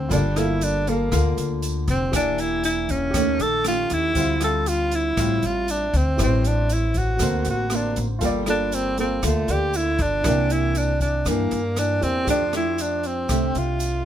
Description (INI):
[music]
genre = bossa nova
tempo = 118 BPM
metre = 4/4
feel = straight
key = unclear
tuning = A4 = 440 Hz
[part]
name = breathy tenor saxophone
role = melody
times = 0.0-14.1 s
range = A3 to A4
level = -23 LUFS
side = right 1 dB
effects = none
[part]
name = nylon-string guitar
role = accompaniment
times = 0.0-14.1 s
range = G2 to A4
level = -27 LUFS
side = left 1 dB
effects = none
[part]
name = warm baby grand piano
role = accompaniment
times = 0.0-14.1 s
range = Bb3 to E5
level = -34 LUFS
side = right 2 dB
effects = none
[part]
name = upright bass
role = bass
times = 0.0-14.0 s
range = E1 to G2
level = -25 LUFS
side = equal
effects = none
[part]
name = open jazz drum kit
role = drums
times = 0.1-13.9 s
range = hi-hat, kick drum, rim click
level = -29 LUFS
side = equal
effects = none
[part]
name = tube shaker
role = percussion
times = 0.1-14.1 s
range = none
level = -37 LUFS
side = right 2 dB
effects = none
[sound]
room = little or no reverb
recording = close, detailed microphones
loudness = -20 LUFS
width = side -10 dB against mid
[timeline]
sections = 0.0-14.1 A section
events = none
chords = 0.1 Gm9; 2.1 Em7b5; 3.1 Eb7#11; 4.2 Dm11; 6.2 Am7; 7.2 D7b13; 8.2 Gm9; 10.2 C9; 12.3 F69